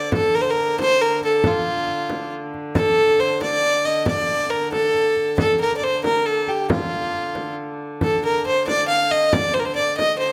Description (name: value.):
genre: medieval dance.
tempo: 91 BPM (dotted quarters).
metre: 6/8.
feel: straight.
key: D phrygian.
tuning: A4 = 440 Hz.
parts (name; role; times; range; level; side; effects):
rich fiddle; melody; 0.0-10.3 s; F4 to F5; -21 LUFS; equal; none.
rich hurdy-gurdy; drone; 0.0-10.3 s; D3; -33 LUFS; equal; none.
frame drum; percussion; 0.1-10.2 s; none; -28 LUFS; equal; none.
room: moderate recital hall reverb, RT60 1.3 s.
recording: close, detailed microphones.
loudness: -20 LUFS.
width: mono.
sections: 0.1-10.3 A section.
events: none.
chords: none.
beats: | 0.12 0.78 | 1.43 2.09 | 2.75 3.41 | 4.06 4.72 | 5.38 6.04 | 6.70 7.35 | 8.01 8.67 | 9.32 9.98.